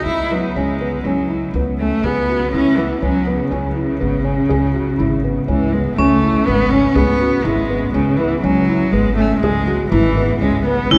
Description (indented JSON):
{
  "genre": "contemporary instrumental, chamber music in an uneven meter",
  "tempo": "122 BPM",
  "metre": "5/4",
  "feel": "straight",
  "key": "C# minor",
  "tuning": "A4 = 440 Hz",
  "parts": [
    { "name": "rich cello", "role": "melody", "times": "0.0-11.0 s", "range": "C#3 to E4", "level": "-20 LUFS", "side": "equal", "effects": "none" },
    { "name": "felt-muted upright piano", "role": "arpeggios", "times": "0.1-11.0 s", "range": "B3 to G#4", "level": "-23 LUFS", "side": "equal", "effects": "none" },
    { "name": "upright bass", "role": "bass", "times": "0.1-11.0 s", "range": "G#1 to C#2", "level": "-23 LUFS", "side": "equal", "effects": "none" },
    { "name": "vibraphone with hard mallets", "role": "second line", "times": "6.0-11.0 s", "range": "C#4 to E4", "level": "-23 LUFS", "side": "equal", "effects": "none" }
  ],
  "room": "wet cathedral reverb, RT60 6.7 s",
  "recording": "recorded in a church or concert hall",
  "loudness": "-17 LUFS",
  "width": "mono",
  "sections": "0.0-6.0 A section; 6.0-11.0 B section",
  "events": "none",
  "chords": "0.0 F#7(no3)/C#; 3.5 C#m7",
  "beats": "0.07 0.57 | 1.06 1.55 2.04 2.54 3.03 | 3.52 4.01 4.51 5.00 5.49 | 5.99 6.48 6.97 7.46 7.96 | 8.45 8.94 9.43 9.93 10.42 | 10.91"
}